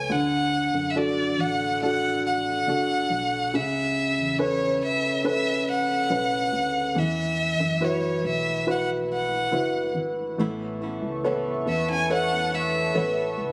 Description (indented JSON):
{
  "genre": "pop",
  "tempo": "70 BPM",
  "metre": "4/4",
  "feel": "straight",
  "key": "A major",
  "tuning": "A4 = 436 Hz",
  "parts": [
    { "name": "warm violin", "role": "melody", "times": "0.0-13.4 s", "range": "C#5 to G#5", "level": "-28 LUFS", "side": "equal", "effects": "none" },
    { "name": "clear baby grand piano", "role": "accompaniment", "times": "0.0-13.5 s", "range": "C#3 to C#5", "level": "-28 LUFS", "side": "equal", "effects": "none" },
    { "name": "organ-like FM bass", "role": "bass", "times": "0.0-13.5 s", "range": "E1 to F#2", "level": "-37 LUFS", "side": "equal", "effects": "none" },
    { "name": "warm analog pad", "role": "sustained chords", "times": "10.4-13.5 s", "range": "B4 to C#6", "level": "-33 LUFS", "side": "equal", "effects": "chorus" },
    { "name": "flamenco guitar", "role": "arpeggios", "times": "10.4-13.5 s", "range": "A2 to E4", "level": "-36 LUFS", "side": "equal", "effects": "none" }
  ],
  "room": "light reverb, small room ambience",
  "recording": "recorded on a phone in the room, studio ambience, compression",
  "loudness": "-25 LUFS",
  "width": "mono",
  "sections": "0.0-13.5 A section",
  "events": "none",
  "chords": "0.1 D; 3.5 Aadd9; 7.0 Esus2; 10.4 Aadd9"
}